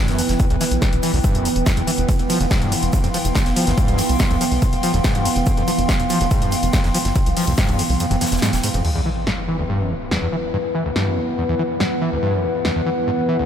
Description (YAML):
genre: driving peak-time techno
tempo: 142 BPM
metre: 4/4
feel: straight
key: E minor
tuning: A4 = 440 Hz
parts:
  - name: overdriven acid bass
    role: riff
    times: 0.0-13.4 s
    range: D2 to F3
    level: -23 LUFS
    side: equal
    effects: distortion, analog chorus, sidechain pumping, ping-pong delay
  - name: deep dark ambient pad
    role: drone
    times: 0.0-13.5 s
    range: E3 to B3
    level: -25 LUFS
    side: right 3 dB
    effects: chorus, built-in reverb, sidechain pumping
  - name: warbly tape-like pad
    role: texture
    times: 0.0-13.5 s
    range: E4 to C6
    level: -25 LUFS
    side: left 2 dB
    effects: chorus, built-in reverb, sidechain pumping
  - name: tight sequencer bass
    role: bass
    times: 0.1-8.8 s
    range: E1 to C2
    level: -22 LUFS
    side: equal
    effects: sidechain pumping
  - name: punchy analog drum machine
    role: drums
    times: 0.1-12.7 s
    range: crash cymbal, hi-hat, ride cymbal, snare drum, tambourine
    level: -25 LUFS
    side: equal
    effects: sidechain pumping on hats, sidechain pumping on cymbals, sidechain pumping on perc
  - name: tight metal drum kit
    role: drums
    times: 0.1-13.5 s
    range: hi-hat, shaker, snare drum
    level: -34 LUFS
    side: equal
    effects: none
  - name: electronic kick drum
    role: drums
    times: 0.4-7.7 s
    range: none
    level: -19 LUFS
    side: equal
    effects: none
  - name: sub drop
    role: sound effects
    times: 8.8-10.5 s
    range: none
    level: -28 LUFS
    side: equal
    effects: none
room: moderate cathedral reverb, RT60 6.8 s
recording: dreamy mix soaked in reverb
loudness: -17 LUFS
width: side -9 dB against mid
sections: 0.0-8.8 A section; 8.8-13.5 B section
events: drop 0.0-8.8; kick drops out 8.0-8.8; impact 8.8-10.5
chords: 0.0 Em; 2.1 Fm; 8.8 E5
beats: | 0.40 0.82 1.24 1.66 | 2.09 2.51 2.93 3.35 | 3.78 4.20 4.62 5.04 | 5.47 5.89 6.31 6.73 | 7.16 7.58 8.00 8.42 | 8.85 9.27 9.69 10.11 | 10.54 10.96 11.38 11.80 | 12.23 12.65 13.07